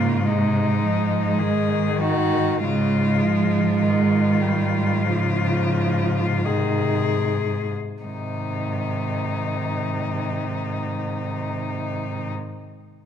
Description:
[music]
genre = classical, lyrical piece for cello ensemble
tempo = 37-54 BPM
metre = 4/4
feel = rubato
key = Ab major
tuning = A4 = 440 Hz
[part]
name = rich cello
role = melody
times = 0.0-12.3 s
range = Eb4 to Ab4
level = -27 LUFS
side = left 8 dB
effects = none
[part]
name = dark cello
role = second line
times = 0.0-12.3 s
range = C3 to Bb3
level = -24 LUFS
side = right 5 dB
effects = none
[part]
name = warm cello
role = accompaniment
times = 0.0-12.3 s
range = C3 to F3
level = -28 LUFS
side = left 4 dB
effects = none
[part]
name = rich cello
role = bass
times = 0.0-12.3 s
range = Ab2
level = -26 LUFS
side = equal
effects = none
[sound]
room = moderate concert hall reverb, RT60 2.0 s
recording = close, detailed microphones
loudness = -20 LUFS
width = side -9 dB against mid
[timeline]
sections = 0.0-8.0 A section; 8.0-13.1 B section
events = slowing down 0.0-8.0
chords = 0.0 Ab7; 8.0 Ab

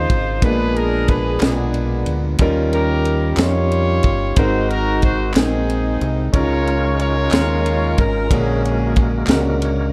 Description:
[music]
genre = slow gospel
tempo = 61 BPM (dotted quarters)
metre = 6/8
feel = straight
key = unclear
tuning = A4 = 440 Hz
[part]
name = warm horn section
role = melody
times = 0.0-9.3 s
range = Cb4 to Db5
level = -24 LUFS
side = equal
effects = none
[part]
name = warm grand piano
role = accompaniment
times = 0.0-9.9 s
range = Ab2 to C6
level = -24 LUFS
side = equal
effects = none
[part]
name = deep dub fingered electric bass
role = bass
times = 0.0-9.9 s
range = G1 to F2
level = -23 LUFS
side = equal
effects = none
[part]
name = tight funk drum kit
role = drums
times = 0.1-9.8 s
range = kick drum, ride cymbal, snare drum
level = -20 LUFS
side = equal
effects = none
[part]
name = group handclap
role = percussion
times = 1.4-9.6 s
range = none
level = -32 LUFS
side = equal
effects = none
[part]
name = bright tonewheel organ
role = sustained chords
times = 6.3-9.9 s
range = Ab3 to C#5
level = -29 LUFS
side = equal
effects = fast rotary speaker, overdrive, chorus vibrato
[sound]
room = light reverb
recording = dark, warm production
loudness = -18 LUFS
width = mono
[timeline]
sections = 0.0-9.9 A section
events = none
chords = 0.4 Bb7b9; 2.4 Eb9; 4.4 Ab9; 6.3 Db69; 8.3 Bb7alt

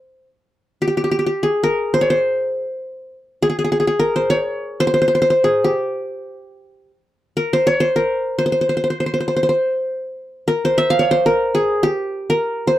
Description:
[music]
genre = arabic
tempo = free time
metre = none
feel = none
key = C maqam hijaz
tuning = A4 = 439 Hz
[part]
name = qanun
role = solo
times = 0.0-12.8 s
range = G4 to F5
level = -16 LUFS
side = equal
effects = none
[sound]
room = light reverb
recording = dry, close 1970s-style studio recording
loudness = -16 LUFS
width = side -14 dB against mid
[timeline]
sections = 0.0-12.8 A section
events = none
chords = none

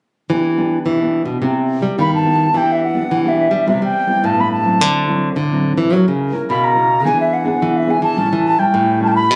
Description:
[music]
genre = samba and choro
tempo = 107 BPM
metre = 4/4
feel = straight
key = E minor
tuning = A4 = 442 Hz
[part]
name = nylon-string guitar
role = accompaniment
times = 0.3-9.4 s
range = G2 to A#4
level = -23 LUFS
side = equal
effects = none
[part]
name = nylon-string guitar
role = bass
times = 0.3-9.4 s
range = A2 to G3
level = -19 LUFS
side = equal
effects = none
[part]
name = wooden flute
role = melody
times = 2.0-9.4 s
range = E5 to B5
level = -18 LUFS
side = equal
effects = none
[sound]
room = light reverb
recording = recorded on a phone in the room, club reverb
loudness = -16 LUFS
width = mono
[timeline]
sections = 0.3-2.6 A section; 2.6-9.4 B section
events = none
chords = 0.3 Em7; 1.4 Cmaj7; 2.6 Em7; 3.7 Cmaj7; 4.8 D9; 5.9 F#7; 7.1 E7; 8.2 A7

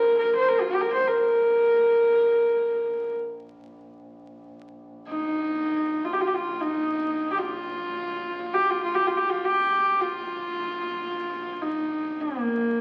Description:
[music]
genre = mongolian traditional, Mongolian folk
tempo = free time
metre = none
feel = none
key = Bb zhi mode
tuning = A4 = 440 Hz
[part]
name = rich horsehead fiddle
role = melody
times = 0.0-12.8 s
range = Bb3 to C5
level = -25 LUFS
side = equal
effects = none
[part]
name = muted double bass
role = drone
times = 0.0-12.8 s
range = Bb1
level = -47 LUFS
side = equal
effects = none
[sound]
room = wet large studio reverb, RT60 1.4 s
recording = very old 78 rpm record, vinyl crackle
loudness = -25 LUFS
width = mono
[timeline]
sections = 0.0-12.8 A section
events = slowing down 9.4-12.8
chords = none

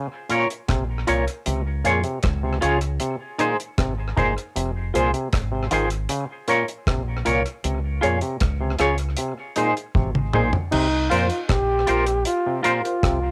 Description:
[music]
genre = roots reggae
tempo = 78 BPM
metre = 4/4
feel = straight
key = unclear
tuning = A4 = 441 Hz
[part]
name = mellow clav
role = arpeggios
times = 0.0-13.2 s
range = Bb2 to Eb3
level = -30 LUFS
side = equal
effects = cassette tape
[part]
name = clean electric guitar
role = accompaniment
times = 0.3-12.8 s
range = Eb4 to Db5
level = -27 LUFS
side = equal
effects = tremolo, cassette tape, dub echo
[part]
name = filtered dub chord stab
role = stabs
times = 0.3-12.9 s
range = Eb4 to Db5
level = -28 LUFS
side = equal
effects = phaser, cassette tape
[part]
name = deep reggae drum kit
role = drums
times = 0.3-13.2 s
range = crash cymbal, hi-hat, kick drum, rim click, toms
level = -27 LUFS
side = equal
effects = cassette tape, tape echo
[part]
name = deep dub fingered electric bass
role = bass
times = 0.7-13.3 s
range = F1 to F2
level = -28 LUFS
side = equal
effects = none
[part]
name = clear trombone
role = second line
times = 10.7-13.3 s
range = Eb4 to G4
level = -25 LUFS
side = equal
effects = cassette tape, dub echo
[sound]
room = light reverb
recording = home recording on cassette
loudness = -23 LUFS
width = mono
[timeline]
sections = 0.0-10.7 A section; 10.7-13.3 B section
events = drum fill 10.0-10.7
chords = 0.0 Bbm; 1.5 Db; 3.0 Ab; 4.5 Fm; 6.1 Bbm; 7.6 Db; 9.2 Ab; 10.7 C7sus4

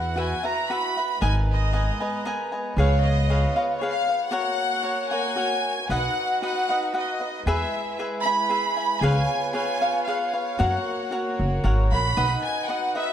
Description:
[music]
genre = mexican folk, mariachi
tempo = 115 BPM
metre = 3/4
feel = straight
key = F# major, B major from 5.9 s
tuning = A4 = 440 Hz
[part]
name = rich chamber violin section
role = melody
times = 0.0-13.1 s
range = C#5 to B5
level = -26 LUFS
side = right 1 dB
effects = none
[part]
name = cavaquinho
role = accompaniment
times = 0.0-13.1 s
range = D#4 to G#5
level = -27 LUFS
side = left 1 dB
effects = none
[part]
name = rich studio violin section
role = sustained chords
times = 0.0-13.1 s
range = G#3 to A#5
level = -34 LUFS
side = right 1 dB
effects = none
[part]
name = upright bass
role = bass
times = 0.0-3.4, 5.9-12.3 s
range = F#1 to F#2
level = -22 LUFS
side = equal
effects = none
[sound]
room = moderate recital hall reverb, RT60 1.6 s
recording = dark, warm production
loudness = -22 LUFS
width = side -10 dB against mid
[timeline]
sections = 0.0-5.9 A section; 5.9-13.1 B section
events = break 4.3-5.9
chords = 0.0 Esus2; 1.2 G#madd9; 2.8 C#7; 4.3 F#; 5.9 B; 7.5 E; 9.0 C#7; 10.6 F#; 12.2 B

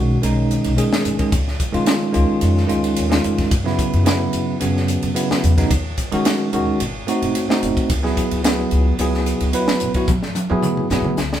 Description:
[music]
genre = electric jazz fusion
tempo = 110 BPM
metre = 4/4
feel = straight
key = unclear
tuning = A4 = 440 Hz
[part]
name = bell-like tine electric piano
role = accompaniment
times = 0.0-11.2 s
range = C#3 to B4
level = -19 LUFS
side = right 1 dB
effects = medium stereo tremolo
[part]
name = upright bass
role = bass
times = 0.0-11.4 s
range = F#1 to D#3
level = -21 LUFS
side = equal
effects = none
[part]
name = crisp fusion drum kit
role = drums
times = 0.2-11.4 s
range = hi-hat, kick drum, ride cymbal, snare drum, toms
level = -22 LUFS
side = equal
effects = none
[sound]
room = moderate studio reverb, RT60 0.6 s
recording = band playing live in one room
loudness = -16 LUFS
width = side -10 dB against mid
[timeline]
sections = 0.0-11.4 A section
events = drum fill 10.1-11.4; tine electric piano fill 11.2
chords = 0.0 B69; 1.3 C#; 3.5 F#5; 5.7 D#m7; 6.8 G#7b9; 7.9 C#m7; 10.1 Eadd9/G#

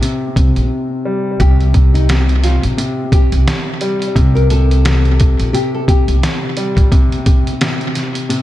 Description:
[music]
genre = hip hop, boom-bap hip-hop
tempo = 87 BPM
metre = 4/4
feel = swing 57% on 16ths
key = unclear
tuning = A4 = 440 Hz
[part]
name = dark baby grand piano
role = accompaniment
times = 0.0-8.4 s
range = C3 to G3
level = -18 LUFS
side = left 1 dB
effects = cassette tape, high-pass filter, low-pass filter, tape echo
[part]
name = trip hop sampler-style drum kit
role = drums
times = 0.0-8.4 s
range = hi-hat, kick drum, snare drum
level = -14 LUFS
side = equal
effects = none
[part]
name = upright bass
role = bass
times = 0.4-6.9 s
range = Bb1 to C2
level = -13 LUFS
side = equal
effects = none
[part]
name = nylon-string guitar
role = melody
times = 1.4-6.9 s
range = Eb4 to Bb4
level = -22 LUFS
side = left 4 dB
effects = high-pass filter, low-pass filter, tape echo
[sound]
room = small room ambience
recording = echo-heavy mix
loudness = -11 LUFS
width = side -14 dB against mid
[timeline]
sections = 0.0-1.4 A section; 1.4-8.4 B section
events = break 0.7-1.4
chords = 0.0 C5

